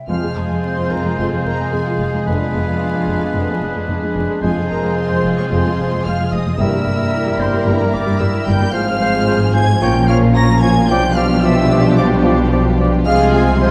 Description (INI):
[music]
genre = classical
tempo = 111 BPM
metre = 4/4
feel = straight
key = F minor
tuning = A4 = 440 Hz
[part]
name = mellow hollow small flute group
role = second line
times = 0.0-13.7 s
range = Eb4 to Bb5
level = -25 LUFS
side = equal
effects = none
[part]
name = concert harp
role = arpeggios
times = 0.0-13.7 s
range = F2 to Ab4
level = -24 LUFS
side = equal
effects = none
[part]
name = warm symphonic violin section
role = melody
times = 0.1-13.7 s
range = Eb5 to Bb6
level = -30 LUFS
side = equal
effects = none
[part]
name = clear oboe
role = second line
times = 0.1-13.7 s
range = Bb4 to F5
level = -29 LUFS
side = equal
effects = none
[part]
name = warm symphonic violin section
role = second line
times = 0.1-13.7 s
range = D4 to C5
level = -28 LUFS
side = equal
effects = none
[part]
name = mellow bassoon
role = accompaniment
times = 0.1-13.7 s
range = F3 to Ab3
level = -27 LUFS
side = equal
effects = none
[part]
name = warm symphonic viola section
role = accompaniment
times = 0.1-13.7 s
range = F3 to D4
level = -28 LUFS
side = equal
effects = none
[part]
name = dark trombone section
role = sustained chords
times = 0.1-13.7 s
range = F2 to Ab3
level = -28 LUFS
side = equal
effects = none
[part]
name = mellow French horn section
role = sustained chords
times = 0.1-13.7 s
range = G3 to F4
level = -26 LUFS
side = equal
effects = none
[part]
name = dark symphonic cello section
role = bass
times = 0.1-13.7 s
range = F2 to C3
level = -23 LUFS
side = equal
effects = none
[part]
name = rich symphonic double bass section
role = bass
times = 0.1-13.7 s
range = F1 to C2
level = -23 LUFS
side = equal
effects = none
[sound]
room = wet scoring stage reverb, RT60 1.9 s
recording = dark, warm production, vinyl crackle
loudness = -16 LUFS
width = mono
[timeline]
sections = 0.1-13.7 A section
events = none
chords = 0.1 Fm; 2.3 Fdim7; 4.4 Fm; 6.6 Edim/G; 8.7 Fm/Ab; 9.8 Bbm; 10.9 G7/B; 13.1 Fm/C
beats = | 0.09 0.64 1.19 1.73 | 2.27 2.81 3.35 3.89 | 4.43 4.97 5.51 6.05 | 6.59 7.13 7.67 8.20 | 8.74 9.27 9.82 10.36 | 10.90 11.44 11.98 12.52 | 13.06 13.60